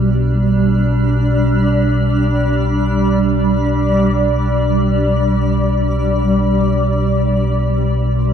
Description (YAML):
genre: dark ambient drone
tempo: free time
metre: none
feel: none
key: unclear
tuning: A4 = 437 Hz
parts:
  - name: granular cloud pad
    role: sustained chords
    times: 0.0-8.3 s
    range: G3 to D5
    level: -16 LUFS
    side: right 1 dB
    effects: built-in reverb
  - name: deep rumbling drone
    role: drone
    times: 0.0-8.3 s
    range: B1 to B2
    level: -16 LUFS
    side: equal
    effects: built-in reverb
room: wet huge ambient reverb, RT60 8.1 s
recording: none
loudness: -13 LUFS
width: side -8 dB against mid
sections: 0.0-8.3 A section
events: none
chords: 0.0 Csus2/B